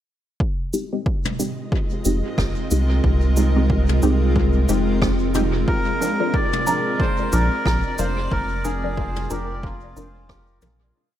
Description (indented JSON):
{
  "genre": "ambient dub",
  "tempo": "91 BPM",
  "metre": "4/4",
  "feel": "swing 58% on 16ths",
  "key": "F dorian",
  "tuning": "A4 = 440 Hz",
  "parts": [
    { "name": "granular cloud pad", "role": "sustained chords", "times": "1.5-11.0 s", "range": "Ab3 to Eb5", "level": "-26 LUFS", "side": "equal", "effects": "built-in reverb" },
    { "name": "electronic kick drum", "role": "drums", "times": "0.4-10.4 s", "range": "none", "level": "-24 LUFS", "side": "equal", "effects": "overdrive" },
    { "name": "filtered dub chord stab", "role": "stabs", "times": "0.7-10.9 s", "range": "F3 to Bb4", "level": "-26 LUFS", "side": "equal", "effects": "phaser, lush chorus, dub echo" },
    { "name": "jazz brush drum kit", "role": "drums", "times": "0.7-10.8 s", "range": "cabasa, rim click, toms", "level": "-30 LUFS", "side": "equal", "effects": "dub echo" },
    { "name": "soft dub sub bass", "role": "bass", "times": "2.1-10.9 s", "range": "F1 to C2", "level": "-20 LUFS", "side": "equal", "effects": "tube saturation" },
    { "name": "melodica", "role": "melody", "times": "5.7-10.6 s", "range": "F4 to D5", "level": "-25 LUFS", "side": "equal", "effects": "dub echo" }
  ],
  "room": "light reverb, small room ambience",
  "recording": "none",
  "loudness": "-18 LUFS",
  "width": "side -11 dB against mid",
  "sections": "0.4-11.0 groove",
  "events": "fade-out 7.4-11.0",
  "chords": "0.4 Fm7; 5.7 Bb"
}